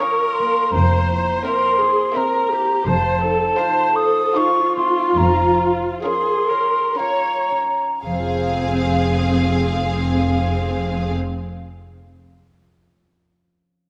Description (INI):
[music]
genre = classical, slow romantic movement for symphony orchestra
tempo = 54-86 BPM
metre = 3/4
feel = rubato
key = F minor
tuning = A4 = 440 Hz
[part]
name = warm studio violin section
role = melody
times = 0.0-11.1 s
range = E5 to F5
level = -33 LUFS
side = equal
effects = none
[part]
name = clear studio violin section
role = second line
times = 0.0-11.1 s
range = C4 to C5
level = -31 LUFS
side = equal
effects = none
[part]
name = mellow concert flute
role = second line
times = 0.0-11.1 s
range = F5 to Eb6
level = -22 LUFS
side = equal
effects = none
[part]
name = rich studio viola section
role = accompaniment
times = 0.0-11.1 s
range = C4 to Db5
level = -25 LUFS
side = equal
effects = none
[part]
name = concert harp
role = arpeggios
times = 0.0-11.9 s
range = F3 to F5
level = -29 LUFS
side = equal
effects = none
[part]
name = rich studio cello section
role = bass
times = 0.7-11.1 s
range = F2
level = -27 LUFS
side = equal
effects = none
[part]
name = rich studio double bass section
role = bass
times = 0.7-11.1 s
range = F1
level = -26 LUFS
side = equal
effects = none
[sound]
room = wet scoring stage reverb, RT60 2.0 s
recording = none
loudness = -19 LUFS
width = mono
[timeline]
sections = 0.0-8.1 A section; 8.1-11.2 B section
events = slowing down 1.8-8.1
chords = 0.0 Bbm/F; 0.7 C7/F; 2.9 F7; 5.2 Bbm/F; 8.1 Fm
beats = | 0.74 1.45 2.15 | 2.86 3.59 4.36 | 5.17 6.04 6.99 | 8.05 9.09 10.14